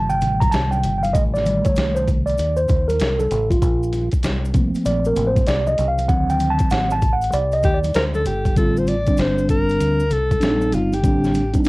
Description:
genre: hip hop, jazz-hop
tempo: 97 BPM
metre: 4/4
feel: swing 64% on 16ths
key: unclear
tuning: A4 = 437 Hz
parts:
  - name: mellow tine electric piano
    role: accompaniment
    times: 0.0-11.7 s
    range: C3 to Bb5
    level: -20 LUFS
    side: right 1 dB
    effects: medium stereo tremolo, cassette tape
  - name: deep dub fingered electric bass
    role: bass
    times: 0.0-11.7 s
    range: G1 to Eb2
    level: -23 LUFS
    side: equal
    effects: none
  - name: maracas and congas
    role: percussion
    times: 0.1-11.7 s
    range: none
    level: -32 LUFS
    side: left 2 dB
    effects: none
  - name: boom bap sampler-style drum kit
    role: drums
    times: 0.2-11.7 s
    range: hi-hat, kick drum, snare drum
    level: -21 LUFS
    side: equal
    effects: none
  - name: breathy alto saxophone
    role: melody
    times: 7.6-11.6 s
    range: F4 to D5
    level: -22 LUFS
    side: left 1 dB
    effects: cassette tape
room: light reverb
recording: home recording on cassette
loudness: -16 LUFS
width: side -22 dB against mid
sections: 0.0-8.6 A section; 8.6-11.7 B section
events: tine electric piano solo 0.0-8.6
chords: 0.0 Am7b5; 3.6 Bbmaj9; 6.1 D7b9; 8.6 Am7b5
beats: 0.53 | 1.14 1.76 2.38 3.00 | 3.62 4.24 4.86 5.47 | 6.09 6.71 7.33 7.95 | 8.57 9.19 9.80 10.42 | 11.04 11.66

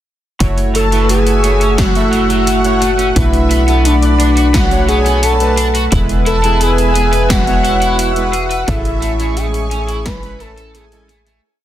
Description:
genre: synthwave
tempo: 87 BPM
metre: 4/4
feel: straight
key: unclear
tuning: A4 = 442 Hz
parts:
  - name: chorused pulse-width pad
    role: sustained chords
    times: 0.7-11.4 s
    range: A3 to E6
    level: -20 LUFS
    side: equal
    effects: sidechain pumping
  - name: cranked stack guitar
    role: riff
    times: 0.4-11.4 s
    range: F#3 to B4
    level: -23 LUFS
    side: right 1 dB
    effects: overdrive, wide subtle chorus, low-pass filter, digital delay
  - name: analog synth brass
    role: stabs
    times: 0.4-11.1 s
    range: G#3 to E5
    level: -20 LUFS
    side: right 3 dB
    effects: chorus, cassette tape
  - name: tight sequencer bass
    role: bass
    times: 0.4-11.4 s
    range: E1 to B1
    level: -16 LUFS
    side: equal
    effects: none
  - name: 80s electronic pad drums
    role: drums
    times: 0.4-11.4 s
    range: hi-hat, snare drum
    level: -22 LUFS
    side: left 1 dB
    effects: overdrive
  - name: electronic kick drum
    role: drums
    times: 0.4-10.2 s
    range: none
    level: -18 LUFS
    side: equal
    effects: overdrive
  - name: expressive synth lead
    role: melody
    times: 0.8-11.3 s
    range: D4 to B4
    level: -17 LUFS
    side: equal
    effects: chorus, digital delay
  - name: string machine, violins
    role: second line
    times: 0.8-11.2 s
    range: D5 to B5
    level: -24 LUFS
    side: equal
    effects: ensemble chorus, digital delay
room: light reverb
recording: dense, heavily limited modern master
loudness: -11 LUFS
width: side -12 dB against mid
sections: 0.4-11.4 verse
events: fade-out 7.8-11.4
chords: 0.4 F#m7; 3.2 Bm7; 5.9 E; 8.7 Amaj7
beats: | 0.40 1.09 1.78 2.47 | 3.16 3.85 4.54 5.23 | 5.92 6.61 7.30 7.99 | 8.68 9.37 10.06 10.75

